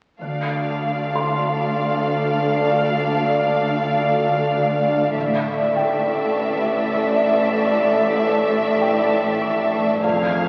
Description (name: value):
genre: cinematic, suspense film score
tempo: 98 BPM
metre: 4/4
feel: straight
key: D minor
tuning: A4 = 440 Hz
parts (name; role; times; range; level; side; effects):
- warm symphonic violin section; melody; 0.2-10.5 s; E5 to F5; -26 LUFS; equal; none
- warm symphonic violin section; second line; 0.2-10.5 s; Ab4 to D5; -28 LUFS; equal; none
- deep dark ambient pad; sustained chords; 1.6-10.5 s; A4 to F5; -25 LUFS; equal; chorus, built-in reverb
- marimba with medium hard mallets; riff; 0.2-10.5 s; F2 to D4; -30 LUFS; equal; none
- rich symphonic cello section; bass; 0.2-10.5 s; D2 to A2; -29 LUFS; equal; none
- rich symphonic double bass section; bass; 0.2-0.8, 5.1-5.7, 10.0-10.5 s; F1 to D2; -41 LUFS; equal; none
- swarming drone; drone; 1.6-10.5 s; A1 to D2; -31 LUFS; equal; built-in reverb
- felt-muted upright piano; texture; 1.2-10.5 s; E5 to C6; -32 LUFS; equal; none
- warm symphonic violin section; texture; 10.0-10.5 s; F6 to Ab6; -32 LUFS; equal; none
room: wet scoring stage reverb, RT60 2.1 s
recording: very old 78 rpm record, vinyl crackle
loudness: -20 LUFS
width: mono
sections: 0.2-10.5 A section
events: none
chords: 0.2 Dm; 5.1 Asus4